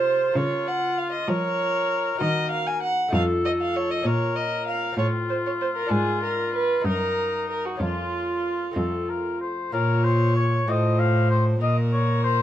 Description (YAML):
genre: classical, baroque-style sonata movement with continuo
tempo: 64 BPM (dotted quarters)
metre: 6/8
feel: straight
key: Bb minor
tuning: A4 = 439 Hz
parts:
  - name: warm oboe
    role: melody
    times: 0.0-12.4 s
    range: Eb4 to F5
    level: -28 LUFS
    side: left 5 dB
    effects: none
  - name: dark violin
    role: second line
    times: 0.0-12.4 s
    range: F4 to Ab5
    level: -26 LUFS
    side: right 3 dB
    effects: none
  - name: lute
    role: accompaniment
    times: 0.0-12.4 s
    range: F2 to Gb4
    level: -30 LUFS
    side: left 1 dB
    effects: none
  - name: rich cello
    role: bass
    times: 0.0-12.4 s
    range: F2 to F3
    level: -25 LUFS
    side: equal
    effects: none
room: moderate studio reverb, RT60 0.8 s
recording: dark, warm production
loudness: -21 LUFS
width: side -12 dB against mid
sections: 0.0-9.7 A section; 9.7-12.4 B section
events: none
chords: 0.4 Bbm/Db; 2.2 Ebm; 3.1 F7; 4.1 Bbm; 5.0 F/A; 5.9 Bb7/Ab; 6.9 Ebm/Gb; 7.8 Bbm/F; 8.8 F; 9.7 Bbm; 10.7 F/A; 11.6 Bbm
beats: | 0.37 1.29 | 2.21 3.14 | 4.06 4.98 | 5.91 6.86 | 7.81 8.77 | 9.73 10.68 | 11.62